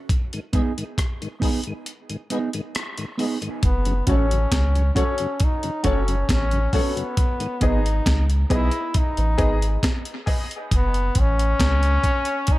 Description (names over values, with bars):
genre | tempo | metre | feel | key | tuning
dub reggae | 68 BPM | 4/4 | straight | F# dorian | A4 = 441 Hz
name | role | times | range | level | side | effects
breakbeat sampler-style drum kit | drums | 0.1-12.6 s | hi-hat, kick drum, rim click, snare drum | -22 LUFS | equal | none
tonewheel organ | accompaniment | 0.3-7.5 s | F#2 to D#4 | -31 LUFS | left 2 dB | overdrive, chorus vibrato, slow rotary speaker, high-pass filter
mellow electric guitar | accompaniment | 0.5-10.5 s | B3 to A4 | -30 LUFS | right 4 dB | vibrato effect, high-pass filter, dub echo
soft dub sub bass | bass | 3.6-12.0 s | F#1 to C#2 | -21 LUFS | equal | none
brilliant trombone | melody | 3.7-12.6 s | B3 to E4 | -26 LUFS | left 1 dB | dub echo
dark upright piano | stabs | 4.1-10.5 s | F#4 to D#5 | -30 LUFS | left 4 dB | high-pass filter, dub echo
room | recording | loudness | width
little or no reverb | none | -19 LUFS | side -17 dB against mid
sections
0.0-3.6 A section; 3.6-12.6 B section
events
break 1.9-3.6; filter sweep 7.2-12.6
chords
0.1 G#m; 3.6 F#m; 7.2 G#m; 10.7 F#m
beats
| 0.09 0.98 1.86 2.75 | 3.63 4.52 5.41 6.29 | 7.17 8.06 8.94 9.83 | 10.71 11.60 12.48